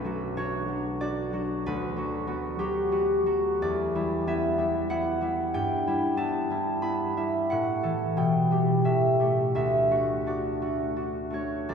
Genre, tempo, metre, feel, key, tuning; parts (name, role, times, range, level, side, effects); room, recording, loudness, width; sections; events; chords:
classical, solo harp piece; 83-95 BPM; 3/4; rubato; D major; A4 = 441 Hz
concert harp; solo; 0.0-11.7 s; B1 to B5; -24 LUFS; equal
wet cathedral reverb, RT60 4.6 s; recorded in a church or concert hall; -24 LUFS; side -6 dB against mid
0.0-11.7 A section
0.0 Bm; 1.6 Bm/D; 3.6 Em; 5.5 Em/G; 7.5 A5; 8.2 G/B; 8.8 A5; 9.6 D